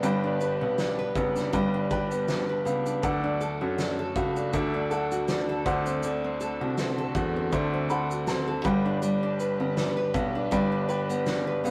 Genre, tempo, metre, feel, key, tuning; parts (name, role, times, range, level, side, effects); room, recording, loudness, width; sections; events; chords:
acoustic pop; 80 BPM; 4/4; swing 55% on 16ths; D major; A4 = 440 Hz
clear baby grand piano; accompaniment; 0.0-11.7 s; D4 to B5; -36 LUFS; equal
nylon-string guitar; accompaniment; 0.0-11.7 s; D3 to B4; -30 LUFS; equal
warm studio string section; sustained chords; 0.0-11.7 s; F#3 to B4; -42 LUFS; equal
clear baby grand piano; bass; 0.0-11.7 s; F#1 to F#2; -34 LUFS; equal
loose indie drum kit; drums; 0.0-11.7 s; kick drum, shaker, snare drum; -36 LUFS; equal
light reverb; rough rehearsal-room recording; -27 LUFS; mono
0.0-11.7 A section
grand piano fill 7.5-9.0
0.0 G; 3.0 D; 5.7 D7; 8.7 G